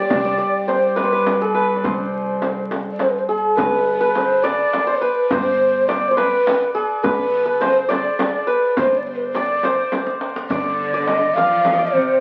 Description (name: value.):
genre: Persian modal ensemble.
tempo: 69 BPM (dotted quarters).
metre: 6/8.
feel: straight.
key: C avaz esfahan.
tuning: A4 = 440 Hz.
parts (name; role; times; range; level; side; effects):
breathy mellow ney; melody; 0.0-12.2 s; Ab4+39c to F5; -22 LUFS; equal; none.
santur; second line; 0.0-12.2 s; G4 to F5; -23 LUFS; equal; none.
rich cello; drone; 0.0-3.6 s; C2; -32 LUFS; equal; none.
upright bass; bass; 0.1-11.5 s; G1 to C2; -38 LUFS; equal; none.
frame drum; percussion; 0.1-11.8 s; none; -28 LUFS; equal; none.
tombak; percussion; 0.1-11.8 s; none; -30 LUFS; equal; none.
warm studio cello section; second line; 10.5-12.2 s; C3 to F3; -28 LUFS; equal; none.
room: wet studio ambience, RT60 0.4 s.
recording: very old 78 rpm record, vinyl crackle.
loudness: -19 LUFS.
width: mono.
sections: 0.0-3.6 A section; 3.6-12.2 B section.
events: drum fill 9.9-10.5.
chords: none.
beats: | 0.11 0.97 | 1.84 2.71 | 3.57 4.44 | 5.31 6.17 | 7.04 7.90 | 8.77 9.63 | 10.50 11.36.